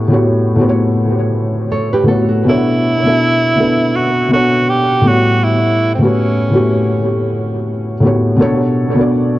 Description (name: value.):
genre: lo-fi hip hop.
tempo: 81 BPM.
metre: 4/4.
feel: swing 58% on 16ths.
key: unclear.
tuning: A4 = 440 Hz.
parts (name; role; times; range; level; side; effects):
felt-muted upright piano; accompaniment; 0.0-9.4 s; A2 to E5; -12 LUFS; equal; cassette tape, low-pass filter, tape echo.
nylon-string guitar; second line; 1.7-2.7 s; F#4 to C#5; -18 LUFS; right 3 dB; low-pass filter, tape echo.
clear tenor saxophone; melody; 2.5-7.1 s; C4 to G4; -15 LUFS; right 2 dB; low-pass filter, tape echo.
room: moderate spring reverb, RT60 1.3 s, small room reverb.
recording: echo-heavy mix, cassette tape.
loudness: -11 LUFS.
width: side -16 dB against mid.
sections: 0.0-9.4 A section.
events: none.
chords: 0.0 A13; 2.5 Bm9; 5.1 A13; 8.4 Bm9.